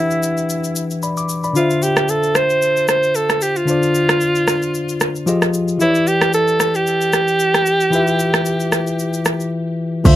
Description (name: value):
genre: amapiano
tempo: 113 BPM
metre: 4/4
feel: swing 55% on 16ths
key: unclear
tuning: A4 = 440 Hz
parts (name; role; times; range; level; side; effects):
- edgy alto saxophone; melody; 0.0-9.5 s; E4 to C5; -17 LUFS; right 1 dB; low-pass filter, ping-pong delay
- tine electric piano; accompaniment; 0.0-10.2 s; D3 to D6; -20 LUFS; left 2 dB; low-pass filter
- smooth R&B drum kit; drums; 0.1-10.2 s; crash cymbal, kick drum, rim click, shaker; -19 LUFS; equal; none
- woody log drum bass; bass; 10.1-10.2 s; D2; -10 LUFS; right 1 dB; none
room: light reverb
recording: dark, warm production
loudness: -15 LUFS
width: side -13 dB against mid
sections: 0.0-10.1 A section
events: kick muted 1.6-2.6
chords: 0.0 Em7; 1.6 Dm9; 5.3 Fm7; 5.8 Em7